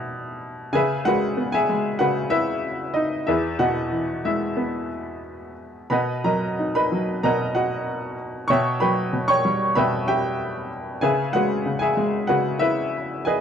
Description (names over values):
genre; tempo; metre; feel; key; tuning
classical, lyrical solo piano; 94 BPM; 4/4; rubato; unclear; A4 = 440 Hz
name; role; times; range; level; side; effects
bright upright piano; solo; 0.0-13.4 s; E2 to C#6; -21 LUFS; equal; none
room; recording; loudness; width
light reverb; dark, warm production; -20 LUFS; side -8 dB against mid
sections
0.0-13.4 A section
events
none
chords
0.0 Em/B; 0.7 C#m7; 3.3 Emaj7; 5.9 Bmaj7; 8.5 Emadd9/B; 11.0 C#m7